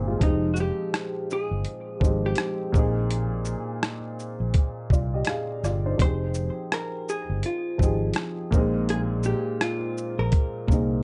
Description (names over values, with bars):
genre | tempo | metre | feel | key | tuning
lo-fi hip hop | 83 BPM | 4/4 | swing 59% on 16ths | F minor | A4 = 437 Hz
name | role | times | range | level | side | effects
dark upright piano | accompaniment | 0.0-11.0 s | Bb2 to F5 | -31 LUFS | equal | cassette tape, low-pass filter
fretless electric bass | bass | 0.0-11.0 s | F1 to C2 | -29 LUFS | equal | none
vintage hollow-body jazz guitar | melody | 0.2-10.9 s | Eb4 to C5 | -34 LUFS | equal | low-pass filter, analog delay
boom bap sampler-style drum kit | drums | 0.2-10.9 s | hi-hat, kick drum, rim click, shaker | -25 LUFS | equal | none
room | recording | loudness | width
light reverb | dark, warm production, nothing above 10.6 kHz | -26 LUFS | mono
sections
0.0-11.0 A section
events
none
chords
0.2 Fm9; 2.7 Bb9sus4; 6.0 Fm9; 8.5 Bb9sus4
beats
| 0.21 0.93 1.66 2.38 | 3.10 3.83 4.55 5.27 | 6.00 6.72 7.44 8.16 | 8.89 9.61 10.33